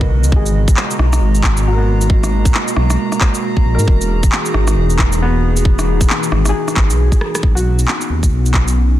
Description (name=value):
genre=future garage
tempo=135 BPM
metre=4/4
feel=swing 60% on 16ths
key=G# minor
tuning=A4 = 437 Hz
part: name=clear upright piano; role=accompaniment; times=0.0-9.0 s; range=B3 to B4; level=-26 LUFS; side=left 1 dB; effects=vintage 12-bit sampler grit, sidechain pumping, tape echo
part: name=warbly tape-like pad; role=sustained chords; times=0.0-9.0 s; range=B2 to A#5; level=-21 LUFS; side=equal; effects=chorus, built-in reverb, sidechain pumping
part: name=dark detuned saw bass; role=bass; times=0.0-9.0 s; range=E1 to G#2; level=-14 LUFS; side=equal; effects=sidechain pumping
part: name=electronic kick drum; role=drums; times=0.0-8.6 s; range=none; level=-13 LUFS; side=equal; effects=none
part: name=electronic shaker, handclaps and rim click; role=drums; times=0.2-8.7 s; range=none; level=-20 LUFS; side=equal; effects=none
part: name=drifting glass-harmonics texture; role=texture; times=1.2-7.4 s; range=A#3 to A#5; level=-28 LUFS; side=right 4 dB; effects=chorus, built-in reverb
room=digital ambience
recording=dense, heavily limited modern master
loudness=-12 LUFS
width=side -13 dB against mid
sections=0.0-7.4 A section; 7.4-9.0 B section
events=drum fill 7.2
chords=0.3 G#m9; 3.9 Emaj7; 7.4 Badd9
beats=| 0.32 0.77 1.21 1.66 | 2.10 2.54 2.99 3.43 | 3.88 4.32 4.77 5.21 | 5.66 6.10 6.54 6.99 | 7.43 7.88 8.32 8.77